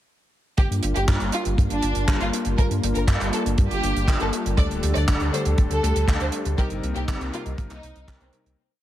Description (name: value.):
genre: italo disco.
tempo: 120 BPM.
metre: 4/4.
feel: straight.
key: G minor.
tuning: A4 = 440 Hz.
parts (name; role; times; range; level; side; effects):
warm symphonic violin section; melody; 0.6-8.3 s; C4 to D5; -29 LUFS; equal; ping-pong delay.
warm analog pad; sustained chords; 0.6-8.6 s; D3 to A4; -29 LUFS; left 1 dB; chorus, vintage 12-bit sampler grit.
round analog bass; bass; 0.6-8.6 s; D1 to G2; -25 LUFS; equal; none.
damped 70s drum kit; drums; 0.6-8.6 s; handclaps, hi-hat; -30 LUFS; right 2 dB; none.
kick drum; drums; 0.6-8.2 s; none; -20 LUFS; equal; none.
clear electric grand piano; stabs; 4.6-8.6 s; C3 to Bb4; -30 LUFS; left 3 dB; none.
room: light reverb.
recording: heavily compressed radio sound.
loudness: -20 LUFS.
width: side -13 dB against mid.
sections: 0.6-8.6 verse.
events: fade-out 5.9-8.6.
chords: 0.6 Gm7; 4.6 Dsus4; 6.6 Cm7.